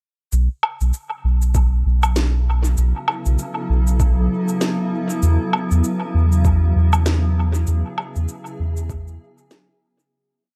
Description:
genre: ambient dub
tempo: 98 BPM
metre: 4/4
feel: swing 58% on 16ths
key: unclear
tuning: A4 = 436 Hz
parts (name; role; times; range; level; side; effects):
- granular cloud pad; sustained chords; 2.1-10.1 s; C#3 to A4; -27 LUFS; equal; built-in reverb
- soft dub sub bass; bass; 0.3-9.2 s; B1 to E2; -18 LUFS; equal; none
- electronic cabasa, woodblock and snare drum; drums; 0.3-10.1 s; none; -27 LUFS; equal; overdrive, dub echo
- electronic kick drum; drums; 1.5-9.0 s; none; -23 LUFS; equal; overdrive
room: little or no reverb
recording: echo-heavy mix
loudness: -19 LUFS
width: mono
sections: 0.3-10.1 groove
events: fade-out 6.9-10.1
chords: 0.3 B5; 5.2 Eadd9

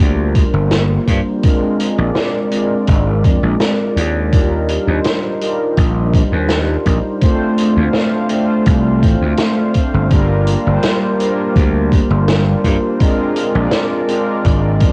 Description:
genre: vaporwave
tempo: 83 BPM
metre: 4/4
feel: straight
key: G minor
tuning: A4 = 439 Hz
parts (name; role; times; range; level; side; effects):
- mellow synth brass; accompaniment; 0.0-14.9 s; G3 to F5; -19 LUFS; equal; subtle chorus, tape echo
- gritty slap bass; bass; 0.0-14.9 s; G1 to G2; -18 LUFS; equal; overdrive
- electronic kick drum; drums; 0.3-14.9 s; none; -16 LUFS; equal; overdrive
- vintage drum kit; drums; 0.3-14.9 s; hi-hat, snare drum; -24 LUFS; equal; none
room: moderate small room reverb, RT60 0.5 s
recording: home recording on cassette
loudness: -15 LUFS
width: mono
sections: 0.0-14.9 A section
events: none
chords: 0.0 Gm7; 1.4 Bb9; 4.3 Ebmaj9; 7.2 Dm7; 10.1 Gm7; 13.0 Bb9

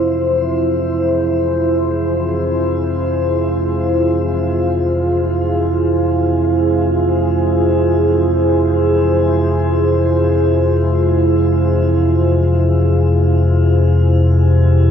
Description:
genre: dark ambient drone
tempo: free time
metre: none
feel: none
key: F harmonic minor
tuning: A4 = 440 Hz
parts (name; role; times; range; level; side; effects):
- deep dark ambient pad; sustained chords; 0.0-14.9 s; E4 to C5; -15 LUFS; right 1 dB; chorus, built-in reverb, shimmer reverb
- deep rumbling drone; drone; 0.0-14.9 s; F2 to C3; -16 LUFS; left 1 dB; built-in reverb, wide subtle chorus
room: wet huge ambient reverb, RT60 8.5 s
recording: none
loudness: -13 LUFS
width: side -8 dB against mid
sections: 0.0-14.9 A section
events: fade-in on synth drone 0.0-14.9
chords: 0.0 Fm; 12.7 C

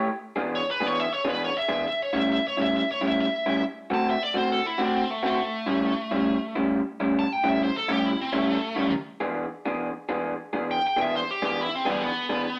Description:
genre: blues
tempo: 136 BPM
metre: 4/4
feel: swing 64% on 8ths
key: A mixolydian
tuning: A4 = 442 Hz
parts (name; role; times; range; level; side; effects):
- electric guitar through a small old amp; riff; 0.0-12.5 s; A2 to G#4; -28 LUFS; equal; none
- smooth overdriven lead guitar; melody; 0.6-12.6 s; G3 to A5; -29 LUFS; equal; none
room: wet studio reverb, RT60 0.7 s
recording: none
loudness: -26 LUFS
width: mono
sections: 0.0-1.8 A section; 1.8-12.6 A section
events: lead electric guitar solo 0.0-12.6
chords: 0.1 E7; 1.8 A7; 3.6 D7; 5.4 A7; 8.9 E7

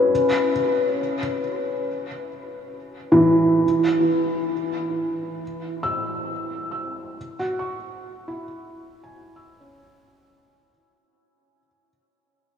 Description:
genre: ambient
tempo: free time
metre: none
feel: none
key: unclear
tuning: A4 = 440 Hz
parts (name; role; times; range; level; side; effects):
- felt-muted upright piano; solo; 0.0-11.9 s; E3 to E6; -21 LUFS; equal; tape echo
room: wet huge ambient reverb, RT60 7.8 s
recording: dreamy mix soaked in reverb, cassette tape, studio ambience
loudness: -20 LUFS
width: side -8 dB against mid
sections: 0.0-10.7 A section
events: fade-out 1.3-10.7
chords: 0.1 N.C.; 7.2 F#5

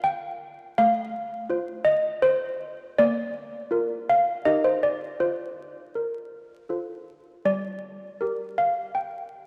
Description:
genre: classical, tune for handbells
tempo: 81 BPM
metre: 3/4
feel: straight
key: unclear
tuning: A4 = 438 Hz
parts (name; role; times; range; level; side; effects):
- malleted handbells; solo; 0.0-9.5 s; G3 to G5; -26 LUFS; equal; none
room: wet church reverb, RT60 2.8 s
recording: vinyl crackle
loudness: -26 LUFS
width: mono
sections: 0.0-9.5 A section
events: none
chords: 0.0 Bb5; 0.8 F/A; 3.0 Bb; 4.5 Eb; 5.2 Fsus4; 6.7 F; 7.5 Gm

